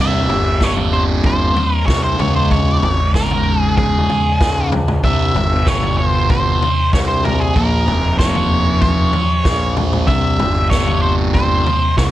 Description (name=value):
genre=psychedelic rock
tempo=95 BPM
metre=4/4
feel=straight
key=C phrygian dominant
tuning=A4 = 442 Hz
part: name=octave-fuzz lead guitar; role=melody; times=0.0-12.0 s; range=Ab4 to E5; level=-19 LUFS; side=equal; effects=distortion, analog delay
part: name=thick fuzz guitar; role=riff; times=0.0-12.1 s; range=C2 to Bb3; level=-20 LUFS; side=right 1 dB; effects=distortion, phaser
part: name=fuzz picked electric bass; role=bass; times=0.0-12.1 s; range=F1 to Db2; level=-20 LUFS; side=equal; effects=overdrive
part: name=vintage drum kit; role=drums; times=0.3-12.1 s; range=kick drum, snare drum, toms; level=-17 LUFS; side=equal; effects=none
room=small room ambience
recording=none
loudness=-13 LUFS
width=side -14 dB against mid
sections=0.0-12.1 A section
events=none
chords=0.0 C; 2.2 Db5; 5.0 C; 7.6 Bbm; 10.1 C